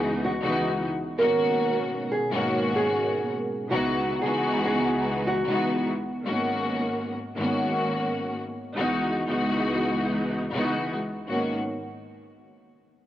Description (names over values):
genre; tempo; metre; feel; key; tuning
hip hop; 95 BPM; 4/4; swing 62% on 16ths; G# minor; A4 = 441 Hz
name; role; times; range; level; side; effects
nylon-string guitar; melody; 0.0-5.8 s; F#4 to A#4; -27 LUFS; right 1 dB; high-pass filter, low-pass filter, tape echo
warm studio string section; accompaniment; 0.0-11.5 s; C#2 to F#4; -25 LUFS; equal; cassette tape, high-pass filter, low-pass filter
dark analog pad; sustained chords; 0.0-6.2 s; B2 to A#4; -37 LUFS; right 1 dB; none
room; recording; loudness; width
light reverb, small room ambience; dry, gritty hardware recording; -24 LUFS; side -12 dB against mid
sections
0.0-6.2 A section; 6.2-11.3 B section; 11.3-13.1 C section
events
none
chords
0.0 C#m11; 1.2 G#m11; 3.7 C#m11; 6.2 G#m11; 8.8 C#m11; 11.3 G#m11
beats
0.55 | 1.18 1.81 2.45 3.08 | 3.71 4.34 4.97 5.60 | 6.24 6.87 7.50 8.13 | 8.76 9.39 10.03 10.66 | 11.29